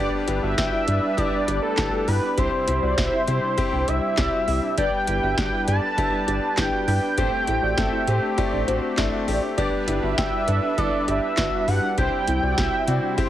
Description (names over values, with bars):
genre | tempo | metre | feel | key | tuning
synth-pop | 100 BPM | 4/4 | straight | G major | A4 = 439 Hz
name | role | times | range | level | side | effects
mellow synth brass | second line | 0.0-13.3 s | C5 to G5 | -30 LUFS | equal | chorus, phaser, slapback echo
clear concert grand piano | accompaniment | 0.0-13.3 s | A3 to A4 | -27 LUFS | left 4 dB | none
brassy analog pad | sustained chords | 0.0-13.3 s | C3 to B4 | -31 LUFS | equal | chorus
warbly dusty pluck | arpeggios | 0.0-13.3 s | D4 to F#4 | -33 LUFS | right 5 dB | chorus, slapback echo
round analog bass | bass | 0.0-13.0 s | G1 to C3 | -26 LUFS | equal | none
electro analog drum machine | drums | 0.3-13.3 s | handclaps, hi-hat, kick drum, snare drum | -27 LUFS | equal | none
octave-doubled lead | melody | 0.6-13.3 s | A4 to A5 | -25 LUFS | right 1 dB | chorus, slapback echo
room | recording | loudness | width
light reverb | heavily compressed radio sound | -20 LUFS | side -12 dB against mid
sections
0.0-13.3 A section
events
none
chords
0.0 G; 2.4 C; 4.8 G; 7.2 Am7; 9.6 G; 12.0 C